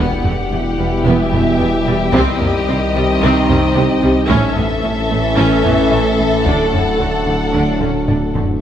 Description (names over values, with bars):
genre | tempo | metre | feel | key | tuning
cinematic, hybrid orchestral and electronic film score | 111 BPM | 4/4 | straight | unclear | A4 = 441 Hz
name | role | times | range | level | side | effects
warm symphonic violin section | melody | 0.0-8.4 s | Eb5 to F#5 | -23 LUFS | left 3 dB | none
warm symphonic violin section | second line | 0.0-8.4 s | G4 to A4 | -22 LUFS | left 1 dB | none
rich symphonic viola section | accompaniment | 0.0-8.4 s | G3 to D4 | -23 LUFS | right 2 dB | none
clear trombone section | sustained chords | 0.0-8.3 s | A2 to F#3 | -21 LUFS | right 2 dB | none
deep rumbling drone | sustained chords | 0.0-8.6 s | G3 to E5 | -21 LUFS | equal | built-in reverb
mellow French horn section | sustained chords | 0.0-8.3 s | G3 to E4 | -23 LUFS | left 3 dB | none
warm symphonic cello section | bass | 0.0-8.4 s | E2 to D3 | -22 LUFS | right 2 dB | none
warm symphonic double bass section | bass | 0.0-8.4 s | E1 to D2 | -23 LUFS | right 2 dB | none
wide detuned saw bass | bass | 0.0-8.6 s | D1 to C2 | -23 LUFS | equal | chorus
taiko ensemble | drums | 0.2-8.6 s | none | -22 LUFS | left 1 dB | none
room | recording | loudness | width
moderate scoring stage reverb, RT60 1.6 s | none | -12 LUFS | side -10 dB against mid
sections
0.0-8.6 A section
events
drum fill 7.8-8.6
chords
0.0 Em; 2.1 Cm; 4.3 A; 6.5 D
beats
0.51 1.05 1.59 | 2.13 2.67 3.21 3.75 | 4.29 4.84 5.38 5.92 | 6.46 7.00 7.54 8.08